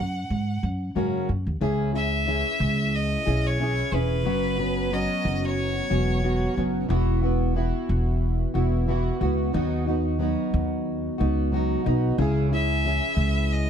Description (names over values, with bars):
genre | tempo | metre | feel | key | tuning
acoustic pop | 91 BPM | 4/4 | swing 55% on 16ths | unclear | A4 = 440 Hz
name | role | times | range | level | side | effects
bright violin | melody | 0.0-6.6, 12.5-13.7 s | B4 to F#5 | -28 LUFS | left 1 dB | tape echo
fingerpicked plugged-in steel-string acoustic guitar | accompaniment | 0.0-13.7 s | F#2 to G#4 | -26 LUFS | equal | double-tracked left and right
upright bass | bass | 0.0-13.7 s | E1 to G#2 | -25 LUFS | equal | none
room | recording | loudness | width
light reverb | dark, warm production | -22 LUFS | side -8 dB against mid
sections
0.0-1.6 A section; 1.6-13.7 B section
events
none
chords
0.0 F#; 1.6 C#m; 4.3 Esus2; 9.5 B/D#; 12.2 C#m